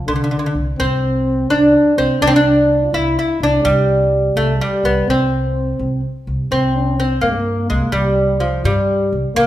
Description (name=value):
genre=persian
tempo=84 BPM (dotted quarters)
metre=6/8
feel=straight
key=C dastgah mahur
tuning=A4 = 440 Hz
part: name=lute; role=melody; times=0.0-9.5 s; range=D3 to E4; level=-16 LUFS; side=right 1 dB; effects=none
part: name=upright bass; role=bass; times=0.0-9.5 s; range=C2 to G2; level=-20 LUFS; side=equal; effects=none
part: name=mellow trombone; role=second line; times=0.1-9.5 s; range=D3 to F4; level=-22 LUFS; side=left 3 dB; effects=none
room=moderate recital hall reverb, RT60 1.4 s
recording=minimal, uncompressed stereo recording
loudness=-14 LUFS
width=side -13 dB against mid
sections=0.0-6.5 A section; 6.5-9.5 B section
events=none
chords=none